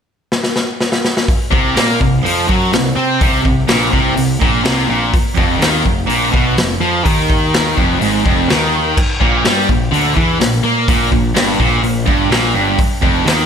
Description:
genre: hard rock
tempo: 125 BPM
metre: 4/4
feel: straight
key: unclear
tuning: A4 = 440 Hz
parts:
  - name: raw garage drum kit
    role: drums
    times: 0.3-13.4 s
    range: crash cymbal, hi-hat, kick drum, snare drum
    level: -16 LUFS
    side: equal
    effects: none
  - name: distorted electric guitar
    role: riff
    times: 1.5-13.5 s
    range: F2 to C4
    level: -17 LUFS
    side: right 9 dB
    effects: distortion
  - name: tight distorted guitar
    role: riff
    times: 1.5-13.5 s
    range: F2 to C4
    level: -17 LUFS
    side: left 10 dB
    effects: distortion
  - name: growling picked electric bass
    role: bass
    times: 1.5-13.5 s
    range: F1 to C3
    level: -20 LUFS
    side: equal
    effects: overdrive
room: moderate recital hall reverb, RT60 1.3 s, studio reverb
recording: big arena sound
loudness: -12 LUFS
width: side -7 dB against mid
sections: 0.0-1.3 A section; 1.3-13.5 B section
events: drum fill 0.3-1.3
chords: 0.0 N.C.; 1.3 Bbsus2; 5.1 Fm7b5; 9.0 Gm6; 12.8 F7(no3)

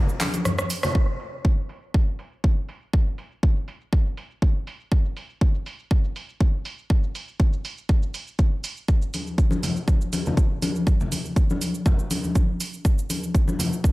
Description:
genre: house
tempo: 121 BPM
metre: 4/4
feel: swing 53% on 16ths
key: none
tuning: none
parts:
  - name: house drum kit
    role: drums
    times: 0.1-13.9 s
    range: handclaps, hi-hat, rim click, shaker, toms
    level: -30 LUFS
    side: right 2 dB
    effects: low-pass filter on hats, low-pass filter on perc, low-pass filter on snare, low-pass filter on toms, low-pass filter on room
  - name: congas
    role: percussion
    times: 0.2-0.9, 9.1-13.9 s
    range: none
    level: -26 LUFS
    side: left 2 dB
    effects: none
  - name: electronic kick drum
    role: drums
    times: 0.9-13.9 s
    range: none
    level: -20 LUFS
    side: equal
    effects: none
room: digital ambience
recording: none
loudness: -21 LUFS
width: side -20 dB against mid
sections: 1.0-13.9 A section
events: kick drops out 0.5-1.0; drum fill 0.5-1.0; band accent 0.8; filter sweep on drum 1.0-13.9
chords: none

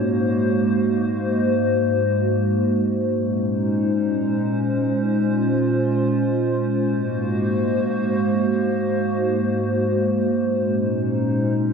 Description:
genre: hip hop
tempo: free time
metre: none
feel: none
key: Bb minor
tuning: A4 = 442 Hz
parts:
  - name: warbly tape-like pad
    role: solo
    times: 0.0-11.7 s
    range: Ab2 to C5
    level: -19 LUFS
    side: equal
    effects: chorus, built-in reverb, low-pass filter, ping-pong delay
room: wet plate reverb, RT60 3.3 s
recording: dreamy mix soaked in reverb, nothing above 7.8 kHz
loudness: -19 LUFS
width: side -6 dB against mid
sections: 0.0-3.1 A section; 3.1-11.7 B section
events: filter sweep on ambient pad 0.0-3.1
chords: 0.0 Ab7; 3.1 Bbm11; 6.8 Ab7; 10.5 Bbm11

